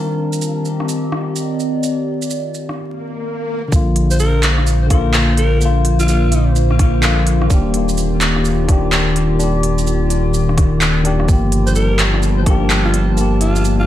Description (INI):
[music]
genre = future garage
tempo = 127 BPM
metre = 4/4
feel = swing 63% on 16ths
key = unclear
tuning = A4 = 436 Hz
[part]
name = tine electric piano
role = accompaniment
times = 0.0-13.9 s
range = D3 to Bb4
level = -20 LUFS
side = left 2 dB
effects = sidechain pumping, ping-pong delay
[part]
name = warbly tape-like pad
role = sustained chords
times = 0.0-13.9 s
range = Eb3 to A5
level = -23 LUFS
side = equal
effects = chorus, built-in reverb, phaser, sidechain pumping
[part]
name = wind-like tuned noise texture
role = texture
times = 0.0-2.8, 11.6-13.9 s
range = F4 to A5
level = -36 LUFS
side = left 1 dB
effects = none
[part]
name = organic electronic drum kit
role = drums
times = 0.3-13.8 s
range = handclaps, hi-hat, rim click, shaker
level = -21 LUFS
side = right 1 dB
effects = none
[part]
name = swell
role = sound effects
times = 3.0-3.7 s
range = none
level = -25 LUFS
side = left 1 dB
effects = none
[part]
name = dark detuned saw bass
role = bass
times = 3.7-13.9 s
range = Eb1 to Bb1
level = -16 LUFS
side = equal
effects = tube saturation, sidechain pumping
[part]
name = electronic kick drum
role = drums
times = 3.7-12.6 s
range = none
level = -13 LUFS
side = equal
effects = none
[part]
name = growling alto saxophone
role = melody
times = 4.1-6.6, 11.7-13.9 s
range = F4 to C5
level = -24 LUFS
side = left 1 dB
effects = ping-pong delay
[sound]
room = moderate plate reverb, RT60 1.3 s, digital ambience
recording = dreamy mix soaked in reverb, vinyl crackle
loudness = -13 LUFS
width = side -12 dB against mid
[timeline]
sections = 0.0-3.7 A section; 3.7-13.9 B section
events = break 2.8-3.7; swell 3.0-3.7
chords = 0.0 Cm7; 3.7 Bb; 7.5 Ebmaj7; 11.3 Gm7